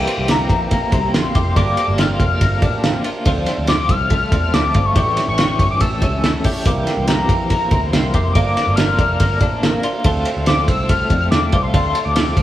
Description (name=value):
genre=jangly indie pop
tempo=141 BPM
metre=4/4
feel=straight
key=D minor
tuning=A4 = 439 Hz
part: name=fingerpicked twelve-string acoustic guitar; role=accompaniment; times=0.0-12.4 s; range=G2 to Bb4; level=-25 LUFS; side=right 3 dB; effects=none
part: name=twelve-string electric guitar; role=arpeggios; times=0.0-12.4 s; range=E3 to G4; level=-24 LUFS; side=left 2 dB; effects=tremolo
part: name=vintage muted picked electric bass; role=bass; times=0.0-12.4 s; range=F1 to F2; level=-22 LUFS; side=equal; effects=none
part: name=cloth-damped thuddy drum kit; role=drums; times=0.1-12.4 s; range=hi-hat, kick drum, ride cymbal, snare drum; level=-18 LUFS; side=equal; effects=none
part: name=warm velvety synth lead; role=melody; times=0.3-12.4 s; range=Bb5 to F6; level=-21 LUFS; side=left 3 dB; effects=chorus
room=moderate stone room reverb, RT60 1.1 s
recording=band playing live in one room, vinyl crackle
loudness=-14 LUFS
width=side -13 dB against mid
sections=0.0-12.4 A section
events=none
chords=0.0 C7; 1.6 Gm7; 3.3 Dm7; 5.0 A7; 6.7 C7; 8.4 Gm7; 10.0 Dm7